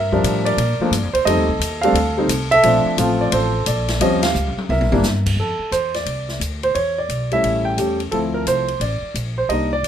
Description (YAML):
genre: jazz piano trio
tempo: 175 BPM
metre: 4/4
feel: swing 64% on 8ths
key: F major from 5.4 s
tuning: A4 = 440 Hz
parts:
  - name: warm concert grand piano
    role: melody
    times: 0.0-9.9 s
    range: E3 to G5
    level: -18 LUFS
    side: right 1 dB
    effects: none
  - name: upright bass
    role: bass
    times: 0.0-9.9 s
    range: G1 to Bb2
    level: -23 LUFS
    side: equal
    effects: none
  - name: open jazz drum kit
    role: drums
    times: 0.1-9.9 s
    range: crash cymbal, hi-hat, kick drum, ride cymbal, snare drum, toms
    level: -26 LUFS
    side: left 3 dB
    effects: none
room: moderate small room reverb, RT60 0.5 s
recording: minimal, uncompressed stereo recording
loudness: -16 LUFS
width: side -9 dB against mid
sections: 0.0-5.4 A section; 5.4-9.9 B section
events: band accent 4.2; drum fill 4.3-5.0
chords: 0.0 Gm9; 1.3 F9; 2.6 Bbmaj7; 4.0 Eb13; 4.7 C7; 5.4 Fmaj7; 6.8 E7(no3); 7.4 A7; 8.1 Dm9